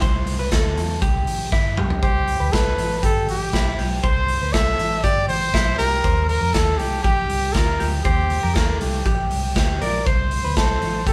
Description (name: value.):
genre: jangly indie pop.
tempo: 120 BPM.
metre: 4/4.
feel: straight.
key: C major.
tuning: A4 = 439 Hz.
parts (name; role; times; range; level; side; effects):
direct-recorded clean electric guitar; arpeggios; 0.0-11.1 s; E4 to C5; -29 LUFS; equal; phaser.
vintage muted fingered electric bass; bass; 0.0-11.1 s; G1 to F2; -26 LUFS; equal; none.
raw garage drum kit; drums; 0.0-11.1 s; hi-hat, kick drum, snare drum, toms; -24 LUFS; equal; none.
warm trumpet; melody; 2.0-11.1 s; G4 to E5; -25 LUFS; equal; none.
room: moderate studio reverb, RT60 0.8 s.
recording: band playing live in one room.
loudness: -20 LUFS.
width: mono.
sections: 0.0-2.0 A section; 2.0-11.1 B section.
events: drum fill 1.5-2.0.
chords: 0.0 C; 6.0 Eb; 10.1 N.C..